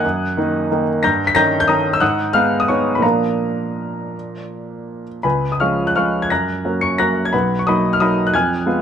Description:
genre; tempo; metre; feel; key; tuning
classical, piano waltz; 154-194 BPM; 3/4; rubato; Eb minor; A4 = 440 Hz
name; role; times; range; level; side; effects
clear grand piano; solo; 0.0-8.8 s; B1 to Db7; -16 LUFS; equal; none
room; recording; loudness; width
light reverb; dark, warm production; -15 LUFS; side -8 dB against mid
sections
0.0-8.8 A section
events
none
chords
0.0 Ebm/Gb; 1.0 Eb7/G; 2.0 Abm7; 3.0 Bb; 5.2 Db7; 6.3 Gb; 7.3 Bmaj7

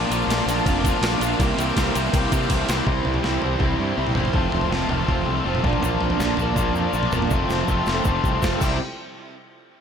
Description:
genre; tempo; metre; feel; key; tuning
indie rock; 162 BPM; 4/4; straight; C mixolydian; A4 = 440 Hz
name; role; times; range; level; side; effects
sweeping resonant pad; sustained chords; 0.0-8.8 s; C3 to D6; -34 LUFS; right 1 dB; none
biting overdriven guitar; riff; 0.0-8.8 s; F2 to F4; -26 LUFS; right 9 dB; analog chorus, digital delay
raw garage guitar; riff; 0.0-8.8 s; E3 to G4; -25 LUFS; left 9 dB; overdrive
fuzz fingered electric bass; bass; 0.0-8.8 s; E1 to C3; -26 LUFS; equal; overdrive
boom bap sampler-style drum kit; drums; 0.1-8.7 s; crash cymbal, kick drum, ride cymbal, snare drum, toms; -25 LUFS; equal; none
egg shaker; percussion; 0.1-2.8, 5.8-8.8 s; none; -38 LUFS; left 12 dB; none
room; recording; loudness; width
little or no reverb; none; -19 LUFS; side -7 dB against mid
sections
0.0-2.9 A section; 2.9-8.8 B section; 8.8-9.8 C section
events
drum fill 2.5-2.9, 7.3-8.8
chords
0.0 Bb; 1.4 C7sus4; 2.9 C; 4.4 F; 5.7 Bb; 7.3 F; 8.6 C; 8.8 N.C.

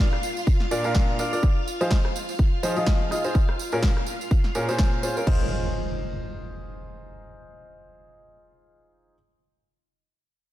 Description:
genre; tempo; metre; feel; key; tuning
piano house; 125 BPM; 4/4; swing 57% on 16ths; F minor; A4 = 440 Hz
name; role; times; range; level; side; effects
string machine, violins; sustained chords; 0.0-5.3 s; F4 to F5; -33 LUFS; left 1 dB; ensemble chorus, sidechain pumping
clear baby grand piano; riff; 0.0-9.1 s; Bb2 to F5; -28 LUFS; equal; sidechain pumping, low-pass filter, ping-pong delay
punchy analog drum machine; drums; 0.1-5.4 s; crash cymbal, rim click, snare drum; -33 LUFS; equal; none
tambourine; percussion; 0.2-5.2 s; none; -38 LUFS; right 8 dB; none
electronic kick drum; drums; 0.5-5.4 s; none; -21 LUFS; equal; none
impact; sound effects; 5.4-9.2 s; none; -32 LUFS; equal; none
room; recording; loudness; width
light reverb, digital ambience; none; -21 LUFS; side -14 dB against mid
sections
0.0-5.3 A section; 5.3-9.1 B section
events
none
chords
0.0 Bb; 1.4 Fm7; 3.4 Bbm7; 5.3 Fm7

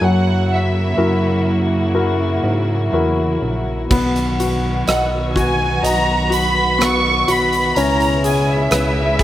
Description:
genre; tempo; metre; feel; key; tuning
pop ballad; 62 BPM; 4/4; straight; B major; A4 = 440 Hz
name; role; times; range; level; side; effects
warm studio violin section; melody; 0.0-9.2 s; E5 to C#6; -19 LUFS; right 1 dB; slapback echo
clear concert grand piano; accompaniment; 0.0-9.2 s; F#3 to D#5; -20 LUFS; left 3 dB; slapback echo
warm studio string section; sustained chords; 0.0-9.2 s; B2 to F#4; -22 LUFS; right 1 dB; none
chorused synth bass; bass; 0.0-9.2 s; A#1 to G#2; -20 LUFS; right 1 dB; none
huge arena drum kit; drums; 3.9-9.2 s; crash cymbal, hi-hat, kick drum, rim click; -23 LUFS; right 1 dB; none
room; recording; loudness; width
little or no reverb; none; -14 LUFS; side -13 dB against mid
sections
0.0-3.9 A section; 3.9-9.2 B section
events
none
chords
0.0 F#7; 3.9 B; 7.8 C#m7

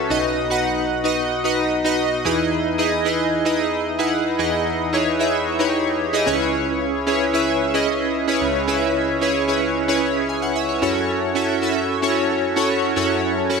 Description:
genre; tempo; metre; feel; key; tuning
pop; 112 BPM; 4/4; straight; unclear; A4 = 440 Hz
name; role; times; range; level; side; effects
chorused retro synth keys; solo; 0.0-13.6 s; B1 to G#5; -18 LUFS; equal; ping-pong delay
room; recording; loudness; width
moderate lush hall reverb, RT60 1.7 s, digital ambience; none; -18 LUFS; side -5 dB against mid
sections
0.0-2.3 A section; 2.3-13.6 B section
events
none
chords
0.1 B; 2.3 Emaj7; 6.3 C#m7; 10.8 F#m7

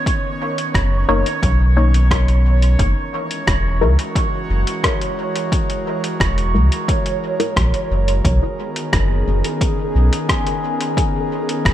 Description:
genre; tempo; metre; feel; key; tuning
ambient dub; 88 BPM; 4/4; straight; F# mixolydian; A4 = 440 Hz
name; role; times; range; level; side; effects
airy breathy pad; sustained chords; 0.0-11.7 s; D#3 to A#4; -26 LUFS; equal; chorus
bubbling stepped-filter texture; texture; 0.0-11.7 s; G#4 to C#5; -25 LUFS; right 2 dB; chorus, built-in reverb
electronic kick drum; drums; 0.1-11.7 s; none; -20 LUFS; equal; overdrive, studio reverb
lo-fi sampler-style drum kit; drums; 0.1-11.7 s; hi-hat, rim click; -24 LUFS; equal; studio reverb, dub echo
warm sub bass; bass; 0.7-11.7 s; E1 to C#2; -15 LUFS; equal; tube saturation
filtered dub chord stab; stabs; 1.1-9.4 s; G#3 to C#5; -24 LUFS; left 3 dB; phaser, dub echo
room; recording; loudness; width
light reverb; none; -15 LUFS; side -12 dB against mid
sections
0.0-11.7 A section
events
none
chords
0.0 Bmaj9; 2.8 F#9; 8.2 Bmaj9

